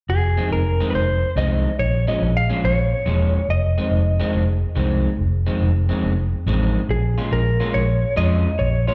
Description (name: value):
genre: electric blues shuffle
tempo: 141 BPM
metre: 4/4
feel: swing 67% on 8ths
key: F minor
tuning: A4 = 440 Hz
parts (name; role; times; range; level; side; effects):
- clean lap steel guitar; melody; 0.1-4.3, 6.9-8.9 s; Ab4 to F5; -26 LUFS; equal; plate reverb, slapback echo
- vintage muted fingered electric bass; bass; 0.1-8.9 s; E1 to F2; -22 LUFS; equal; none
- electric guitar through a small old amp; riff; 0.4-8.9 s; F2 to F4; -27 LUFS; equal; lush chorus, slapback echo
room: light reverb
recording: live gig heard through the venue's PA, recital hall reverb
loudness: -20 LUFS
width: mono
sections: 0.1-8.9 A section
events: none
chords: 0.1 Fm7; 1.8 Bbm7; 3.5 Fm7; 6.9 Bbm7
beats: | 0.09 0.52 0.94 1.36 | 1.79 2.21 2.64 3.06 | 3.49 3.91 4.34 4.76 | 5.19 5.61 6.04 6.46 | 6.89 7.31 7.74 8.16 | 8.59